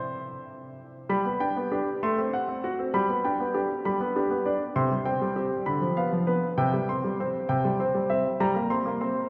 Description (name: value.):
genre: classical-period piano sonatina.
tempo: 66 BPM (dotted quarters).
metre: 6/8.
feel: straight.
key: unclear.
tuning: A4 = 440 Hz.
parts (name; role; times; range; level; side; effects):
clear grand piano; solo; 0.0-9.3 s; C3 to C6; -27 LUFS; equal; none.
room: wet cathedral reverb, RT60 4.8 s.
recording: recorded in a church or concert hall.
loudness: -27 LUFS.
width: mono.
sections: 0.0-1.1 A section; 1.1-9.3 B section.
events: none.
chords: 0.0 N.C.; 1.1 G; 2.0 F#dim/A; 2.9 G; 4.8 C5; 5.7 Bdim/D; 6.6 C; 8.4 C7(no3)/G.